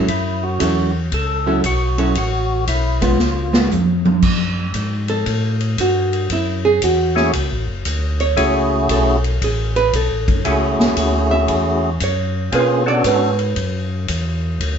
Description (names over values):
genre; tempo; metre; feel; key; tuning
soul jazz organ trio; 116 BPM; 4/4; swing 66% on 8ths; F# minor; A4 = 441 Hz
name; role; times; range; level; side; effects
archtop guitar, miked and amplified; accompaniment; 0.0-13.9 s; F#3 to E5; -19 LUFS; right 3 dB; none
mellow tonewheel organ; bass; 0.0-14.8 s; F#1 to B2; -20 LUFS; left 1 dB; overdrive, chorus vibrato, slow rotary speaker
percussive tonewheel organ; melody; 0.1-3.7, 7.2-13.3 s; A3 to A4; -19 LUFS; equal; slow rotary speaker, overdrive
swinging big-band drum kit; drums; 0.1-14.8 s; crash cymbal, hi-hat, kick drum, ride cymbal, snare drum, toms; -22 LUFS; equal; none
room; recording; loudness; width
moderate studio reverb, RT60 0.7 s; band playing live in one room, nothing above 7.8 kHz; -15 LUFS; side -7 dB against mid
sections
0.0-4.2 A section; 4.2-14.8 B section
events
drum fill 3.2-4.2; hollow-body jazz guitar solo 4.2-14.8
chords
0.1 F#m7; 3.2 C#7; 4.2 F#m7; 12.5 Bm7